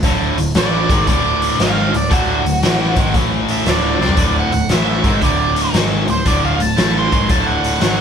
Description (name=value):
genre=blues rock power trio and southern rock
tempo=116 BPM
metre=4/4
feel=swing 66% on 8ths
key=D major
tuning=A4 = 441 Hz
part: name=sludgy distorted guitar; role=riff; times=0.0-8.0 s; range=D2 to C4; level=-17 LUFS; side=equal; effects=overdrive
part: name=vintage muted picked electric bass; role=bass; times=0.0-8.0 s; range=D1 to C2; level=-21 LUFS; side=equal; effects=none
part: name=raw garage drum kit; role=drums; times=0.0-8.0 s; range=hi-hat, kick drum, snare drum, toms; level=-18 LUFS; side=left 1 dB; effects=none
part: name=octave-fuzz lead guitar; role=melody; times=0.6-8.0 s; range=F#4 to C6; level=-20 LUFS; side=right 2 dB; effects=distortion
room=moderate studio reverb, RT60 0.6 s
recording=band playing live in one room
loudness=-13 LUFS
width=side -7 dB against mid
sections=0.0-8.0 A section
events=drum fill 3.9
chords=0.0 D; 3.1 A5; 3.7 D5